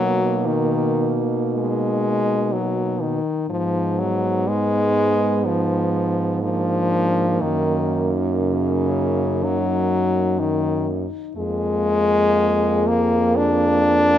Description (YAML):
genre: classical, lyrical piece for horn quartet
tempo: 61 BPM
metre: 4/4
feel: rubato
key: Eb minor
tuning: A4 = 440 Hz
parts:
  - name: mellow French horn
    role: melody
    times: 0.0-14.2 s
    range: D4 to Ab4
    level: -27 LUFS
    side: left 9 dB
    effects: none
  - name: warm French horn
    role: second line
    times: 0.0-14.2 s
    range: Bb3 to Cb4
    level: -26 LUFS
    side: right 6 dB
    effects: none
  - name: warm French horn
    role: accompaniment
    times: 0.0-14.2 s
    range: Db3 to D4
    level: -20 LUFS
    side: left 2 dB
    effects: none
  - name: mellow French horn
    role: bass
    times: 0.0-14.2 s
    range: F2 to B2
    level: -24 LUFS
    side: right 3 dB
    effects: none
room: light reverb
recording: close, detailed microphones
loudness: -18 LUFS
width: side -10 dB against mid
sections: 0.0-14.2 A section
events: none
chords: 0.0 Bmaj7; 3.5 Abm7; 5.5 Bb7/Ab; 7.4 Ebm/Gb; 11.4 Bb7/F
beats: 0.47 1.54 2.54 | 3.50 4.49 5.46 6.44 | 7.41 8.40 9.44 10.40 | 11.37 12.37 13.36